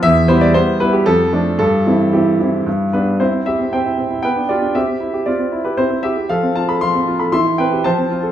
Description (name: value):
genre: classical-period piano sonatina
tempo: 116 BPM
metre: 3/4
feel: straight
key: C major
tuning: A4 = 439 Hz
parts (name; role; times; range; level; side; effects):
- clear concert grand piano; solo; 0.0-8.3 s; E2 to C6; -14 LUFS; equal; none
room: wet recital hall reverb, RT60 1.5 s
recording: minimal, uncompressed stereo recording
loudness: -14 LUFS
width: side -10 dB against mid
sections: 0.0-3.2 A section; 3.2-8.3 B section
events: none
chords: 0.0 Em; 1.1 Dm/F; 1.6 C/G; 2.7 G; 3.2 C; 4.2 G/B; 4.8 C; 6.3 F; 7.3 C/E